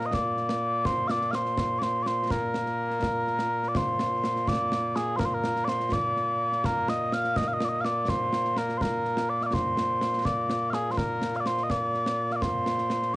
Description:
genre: scottish traditional, Scottish pipe music.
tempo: 83 BPM (dotted quarters).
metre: 6/8.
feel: straight.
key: Bb major.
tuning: A4 = 440 Hz.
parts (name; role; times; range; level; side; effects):
mellow small bagpipes; melody; 0.0-13.2 s; Bb2 to F5; -25 LUFS; equal; cassette tape.
concert snare drum and concert bass drum; drums; 0.0-13.1 s; none; -32 LUFS; equal; cassette tape.
room: light reverb, small room ambience.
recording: home recording on cassette, nothing above 10.5 kHz.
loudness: -25 LUFS.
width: side -20 dB against mid.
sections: 0.0-3.7 A section; 3.7-13.2 B section.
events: none.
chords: none.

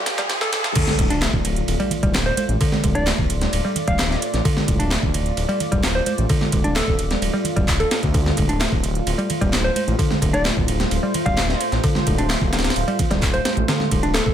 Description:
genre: breakbeat, breaks.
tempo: 130 BPM.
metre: 4/4.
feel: straight.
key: D minor pentatonic.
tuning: A4 = 440 Hz.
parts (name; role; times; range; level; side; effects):
deep dark ambient pad; sustained chords; 0.0-14.3 s; A3 to D5; -28 LUFS; right 1 dB; chorus, built-in reverb, sidechain pumping.
picked electric bass; riff; 0.0-14.2 s; D3 to D4; -24 LUFS; equal; vintage 12-bit sampler grit, ping-pong delay.
riser and impact; sound effects; 0.0-2.6 s; none; -27 LUFS; equal; none.
breakbeat sampler-style drum kit; drums; 0.1-14.3 s; crash cymbal, kick drum, ride cymbal, snare drum; -22 LUFS; equal; overdrive, high-pass filter on kick, high-pass filter on cymbals, high-pass filter on snare, high-pass filter on room.
house drum kit; drums; 0.1-14.2 s; handclaps, hi-hat; -27 LUFS; right 1 dB; none.
soft struck synth lead; melody; 0.4-14.3 s; A4 to F5; -26 LUFS; equal; chorus, AM radio sound, ping-pong delay.
congas; percussion; 0.9-14.3 s; none; -29 LUFS; right 6 dB; none.
detuned saw bass; bass; 1.0-14.3 s; D1 to D2; -23 LUFS; equal; none.
room: light reverb.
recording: high-pass filter.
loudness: -18 LUFS.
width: side -10 dB against mid.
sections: 0.8-14.3 A section.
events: drum fill 0.0-0.8; riser 0.0-0.8; drop 0.8-14.3; impact 0.8-2.6.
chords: 0.0 Dm.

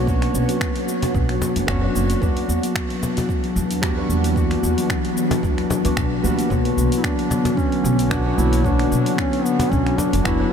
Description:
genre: organic downtempo.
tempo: 112 BPM.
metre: 4/4.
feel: swing 55% on 16ths.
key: B minor.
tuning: A4 = 435 Hz.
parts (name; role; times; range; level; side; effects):
felt-muted upright piano; accompaniment; 0.0-10.5 s; D3 to C#5; -26 LUFS; equal; analog chorus, sidechain pumping, tape echo.
ethereal airy pad; sustained chords; 0.0-10.5 s; D3 to C#5; -26 LUFS; equal; ensemble chorus, built-in reverb, sidechain pumping.
steel tongue drum; arpeggios; 0.0-10.5 s; F#3 to F#4; -24 LUFS; left 2 dB; tape echo.
upright bass; bass; 0.0-10.4 s; F#1 to E2; -22 LUFS; equal; tube saturation, sidechain pumping.
bronze singing bowl; texture; 0.0-10.5 s; B4; -39 LUFS; right 9 dB; none.
deep house drum kit; drums; 0.1-10.4 s; cabasa, finger snaps, hi-hat; -30 LUFS; equal; none.
electronic kick drum; drums; 0.1-10.4 s; none; -24 LUFS; right 1 dB; none.
cajon; percussion; 0.2-10.1 s; none; -30 LUFS; left 1 dB; none.
mellow duduk; melody; 7.0-10.5 s; B3 to E4; -24 LUFS; equal; ping-pong delay.
room: moderate huge ambient reverb, RT60 8.0 s.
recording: dreamy mix soaked in reverb.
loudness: -18 LUFS.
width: side -7 dB against mid.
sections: 0.0-10.5 A section.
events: none.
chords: 0.0 Bmadd9; 2.2 Em7; 6.5 Bmadd9.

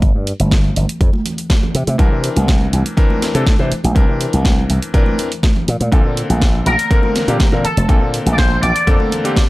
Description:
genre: nu-disco, nu disco.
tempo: 122 BPM.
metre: 4/4.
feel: straight.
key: unclear.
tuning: A4 = 441 Hz.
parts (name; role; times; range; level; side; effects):
slap bass with an envelope filter; bass; 0.0-9.0 s; F1 to C3; -17 LUFS; equal; sidechain pumping.
electronic kick drum; drums; 0.0-9.5 s; none; -14 LUFS; equal; none.
house drum kit; drums; 0.0-9.5 s; hi-hat, snare drum; -23 LUFS; right 1 dB; none.
congas; percussion; 0.4-9.5 s; none; -24 LUFS; right 2 dB; none.
clear electric grand piano; accompaniment; 2.0-9.4 s; D3 to C5; -21 LUFS; left 2 dB; analog delay.
electric guitar with an envelope filter; melody; 6.7-9.5 s; A4 to D5; -19 LUFS; left 1 dB; ensemble chorus, tape echo.
room: digital ambience.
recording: dry, gritty hardware recording.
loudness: -12 LUFS.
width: side -19 dB against mid.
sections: 0.0-9.5 A section.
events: none.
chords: 0.0 N.C.; 1.7 C9; 5.7 Bbmaj9.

